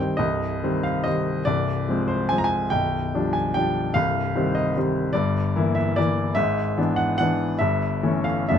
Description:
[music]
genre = classical, romantic triple-time dance for piano with dotted rhythms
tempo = 146 BPM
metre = 3/4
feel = uneven beats, rubato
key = C minor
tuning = A4 = 440 Hz
[part]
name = clear baby grand piano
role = solo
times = 0.0-8.6 s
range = B0 to Bb5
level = -20 LUFS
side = left 1 dB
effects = none
[sound]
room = light reverb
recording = close, detailed microphones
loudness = -21 LUFS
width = side -8 dB against mid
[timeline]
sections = 0.2-8.6 A section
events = none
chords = 0.2 Cm; 1.5 Fm/C; 2.7 G7/B; 4.0 Cm; 5.2 Em7b5/G; 6.4 E7/G#; 7.6 A7/G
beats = | 0.20 0.63 1.06 | 1.47 1.88 2.31 | 2.73 3.14 3.56 | 3.95 4.36 4.76 | 5.15 5.55 5.97 | 6.36 6.78 7.20 | 7.61 8.03 8.50

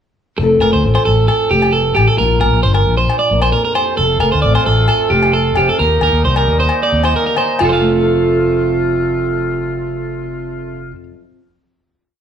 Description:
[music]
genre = highlife guitar band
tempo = 133 BPM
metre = 4/4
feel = straight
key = F mixolydian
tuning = A4 = 441 Hz
[part]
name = nylon-string guitar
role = accompaniment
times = 0.4-11.5 s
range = F2 to C5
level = -20 LUFS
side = left 3 dB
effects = none
[part]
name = electric guitar at the edge of break-up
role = arpeggios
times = 0.4-11.0 s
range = F4 to F5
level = -15 LUFS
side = right 3 dB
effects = none
[part]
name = fingered electric bass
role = bass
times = 0.4-10.9 s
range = F1 to Eb2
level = -17 LUFS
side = left 1 dB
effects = none
[part]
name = agogo bells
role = percussion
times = 0.6-7.7 s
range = none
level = -21 LUFS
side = left 1 dB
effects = none
[part]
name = warm woodwind section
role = sustained chords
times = 4.0-10.9 s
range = G3 to F4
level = -24 LUFS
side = left 3 dB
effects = none
[sound]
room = moderate large studio reverb, RT60 1.1 s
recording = band playing live in one room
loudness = -12 LUFS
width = side -8 dB against mid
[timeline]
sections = 0.4-7.6 groove; 7.6-11.2 final chord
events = none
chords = 0.4 F; 2.2 Bb; 4.0 F; 5.8 Eb; 7.6 F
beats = | 0.39 0.83 1.29 1.74 | 2.19 2.64 3.09 3.54 | 3.99 4.45 4.90 5.35 | 5.80 6.25 6.71 7.16 | 7.61 8.06 8.51 8.96 | 9.41 9.86 10.31 10.76

